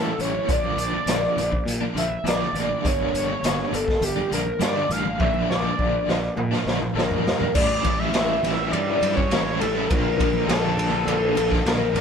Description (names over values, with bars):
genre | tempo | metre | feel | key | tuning
psychedelic rock | 102 BPM | 4/4 | straight | unclear | A4 = 441 Hz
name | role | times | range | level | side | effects
overdriven synth lead | melody | 0.0-12.0 s | G4 to F5 | -25 LUFS | left 1 dB | chorus
crunchy overdriven guitar | riff | 0.0-12.0 s | G2 to E4 | -27 LUFS | right 1 dB | tremolo
fuzz fingered electric bass | bass | 0.0-12.0 s | F1 to Bb2 | -28 LUFS | equal | overdrive
raw garage drum kit | drums | 0.2-12.0 s | crash cymbal, hi-hat, kick drum, ride cymbal, snare drum, toms | -25 LUFS | equal | none
congas | percussion | 0.2-12.0 s | none | -36 LUFS | left 5 dB | none
room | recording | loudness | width
light reverb | band playing live in one room, lossy compression artefacts | -20 LUFS | side -7 dB against mid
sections
0.0-7.5 A section; 7.5-12.0 B section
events
drum fill 5.2-7.5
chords
0.5 Bb; 2.8 Gm; 5.2 Bb; 7.5 A7; 9.9 Bb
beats
| 0.48 1.07 1.66 2.25 | 2.83 3.42 4.01 4.60 | 5.19 5.78 6.37 6.96 | 7.55 8.13 8.72 9.31 | 9.90 10.49 11.07 11.66